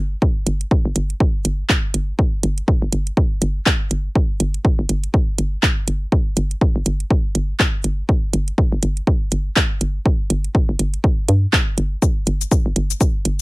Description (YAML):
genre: minimal techno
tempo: 122 BPM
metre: 4/4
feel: swing 58% on 16ths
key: unclear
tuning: A4 = 439 Hz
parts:
  - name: hollow knocking FM bass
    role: bass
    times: 0.0-13.4 s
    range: G1 to G2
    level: -20 LUFS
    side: equal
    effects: sidechain pumping
  - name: electronic kick drum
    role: drums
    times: 0.2-13.1 s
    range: none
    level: -17 LUFS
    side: equal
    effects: none
  - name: house drum kit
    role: drums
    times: 0.5-13.4 s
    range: handclaps, hi-hat, shaker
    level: -20 LUFS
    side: right 1 dB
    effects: none
room: little or no reverb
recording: none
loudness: -16 LUFS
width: side -21 dB against mid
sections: 0.0-13.4 A section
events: none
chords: none